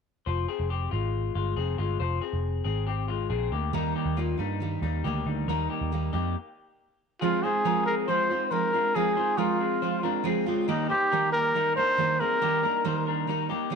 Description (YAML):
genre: indie pop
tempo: 138 BPM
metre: 4/4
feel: straight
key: unclear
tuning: A4 = 441 Hz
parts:
  - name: electric guitar through a small old amp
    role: arpeggios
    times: 0.3-13.8 s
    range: G3 to C5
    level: -30 LUFS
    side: left 12 dB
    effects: slapback echo
  - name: vintage muted picked electric bass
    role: bass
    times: 0.3-6.3 s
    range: F1 to G2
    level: -29 LUFS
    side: right 1 dB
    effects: none
  - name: fingerpicked steel-string acoustic guitar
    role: accompaniment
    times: 3.7-13.8 s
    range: Eb3 to F4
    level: -30 LUFS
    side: right 12 dB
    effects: none
  - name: breathy trumpet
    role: melody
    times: 7.2-13.1 s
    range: Eb4 to C5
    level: -25 LUFS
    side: equal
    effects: slapback echo
room: moderate spring reverb, RT60 1.3 s, small room ambience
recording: 1960s-style stereo with parts hard left and right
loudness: -24 LUFS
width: side -6 dB against mid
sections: 0.3-7.2 A section; 7.2-13.8 B section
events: stop 6.3-7.2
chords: 0.3 Fm; 3.7 Eb; 7.2 Fm; 10.7 Eb